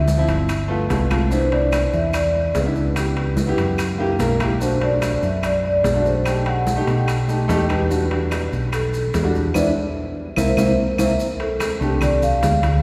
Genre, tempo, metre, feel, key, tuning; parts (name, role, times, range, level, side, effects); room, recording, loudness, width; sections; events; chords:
Afro-Cuban jazz; 146 BPM; 4/4; straight; A4 = 437 Hz
vibraphone with soft mallets; melody; 0.0-12.6 s; A4 to G5; -26 LUFS; equal
warm concert grand piano; accompaniment; 0.0-12.4 s; F3 to A#4; -26 LUFS; equal
fingered electric bass; bass; 0.0-12.8 s; G1 to B2; -24 LUFS; equal
congas; percussion; 0.1-12.8 s; -30 LUFS; equal
maracas; percussion; 0.1-12.8 s; -40 LUFS; equal
timbales; percussion; 0.1-12.8 s; -31 LUFS; equal
claves; percussion; 0.5-12.2 s; -37 LUFS; equal
wet church reverb, RT60 3.1 s; recorded in a church or concert hall; -20 LUFS; mono
0.0-11.2 A section; 11.2-12.8 B section
band accent 9.5-11.2; drum fill 10.4-11.2
0.5 G7; 1.3 Cmaj9; 3.0 C#m7b5; 3.8 F#7b9; 4.6 Bm7; 6.3 B7b13; 7.9 Em9; 10.4 C7; 11.2 F6